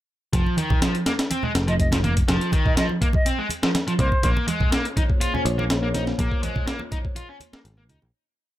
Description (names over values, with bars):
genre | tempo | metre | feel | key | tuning
breakbeat, breaks | 123 BPM | 4/4 | straight | unclear | A4 = 445 Hz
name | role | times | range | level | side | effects
distorted electric guitar | riff | 0.3-8.0 s | Eb3 to F4 | -26 LUFS | equal | distortion, tube saturation, tape echo
picked electric bass | bass | 0.3-8.1 s | F1 to Db2 | -24 LUFS | equal | none
breakbeat sampler-style drum kit | drums | 0.3-8.0 s | hi-hat, kick drum, snare drum | -22 LUFS | equal | none
congas | percussion | 0.5-8.1 s | none | -30 LUFS | right 2 dB | none
bright wooden flute | melody | 1.7-4.3 s | C5 to Eb5 | -29 LUFS | equal | AM radio sound, vintage 12-bit sampler grit, tape echo
dark analog pad | sustained chords | 4.9-8.1 s | Bb3 to Db5 | -32 LUFS | left 2 dB | chorus, phaser, sidechain pumping
room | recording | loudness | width
little or no reverb | none | -20 LUFS | side -14 dB against mid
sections
0.3-8.1 drop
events
drop 0.3-8.1; fade-out 5.5-8.1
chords
0.3 N.C.; 4.2 Bbm7